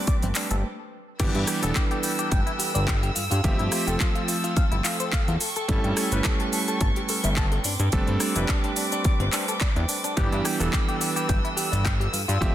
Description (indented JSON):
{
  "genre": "nu-disco, nu disco",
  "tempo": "107 BPM",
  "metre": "4/4",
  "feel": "swing 55% on 16ths",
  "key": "G mixolydian",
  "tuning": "A4 = 437 Hz",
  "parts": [
    { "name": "warm electric grand piano", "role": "accompaniment", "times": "0.0-12.5 s", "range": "E3 to E5", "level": "-29 LUFS", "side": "right 3 dB", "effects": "sidechain pumping, ping-pong delay" },
    { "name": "rich studio violin section", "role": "sustained chords", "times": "0.0-12.5 s", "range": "C4 to E6", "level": "-32 LUFS", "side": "equal", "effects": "sidechain pumping" },
    { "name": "direct-recorded clean electric guitar", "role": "riff", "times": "0.0-12.5 s", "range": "C4 to A5", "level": "-33 LUFS", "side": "left 4 dB", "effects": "wide subtle chorus, vintage 12-bit sampler grit, ping-pong delay" },
    { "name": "electronic kick drum", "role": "drums", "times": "0.1-12.5 s", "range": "none", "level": "-24 LUFS", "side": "equal", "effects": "studio reverb" },
    { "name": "house drum kit", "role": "drums", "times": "0.1-12.5 s", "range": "cabasa, crash cymbal, handclaps, hi-hat, rim click", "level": "-28 LUFS", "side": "equal", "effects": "studio reverb" },
    { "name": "fat analog bass", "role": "bass", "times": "0.2-12.5 s", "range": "E1 to G2", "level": "-26 LUFS", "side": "equal", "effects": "tube saturation" },
    { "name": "congas", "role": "percussion", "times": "0.2-0.6 s", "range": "none", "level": "-37 LUFS", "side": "right 3 dB", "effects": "none" }
  ],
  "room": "light reverb",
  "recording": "dense, heavily limited modern master",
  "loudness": "-22 LUFS",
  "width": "side -12 dB against mid",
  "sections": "0.0-1.2 A section; 1.2-12.5 B section",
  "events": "filter sweep on electric grand piano 0.0-1.2; stop 0.6-1.2; drop 1.2-12.5",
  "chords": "0.0 D7sus4; 1.2 G6; 3.2 Fmaj9; 5.4 A7/G; 7.6 D7sus4; 10.2 G6",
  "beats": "0.08 0.64 | 1.20 1.76 2.32 2.88 | 3.44 4.00 4.57 5.12 | 5.69 6.25 6.81 7.37 | 7.93 8.49 9.05 9.61 | 10.17 10.73 11.29 11.85 | 12.41"
}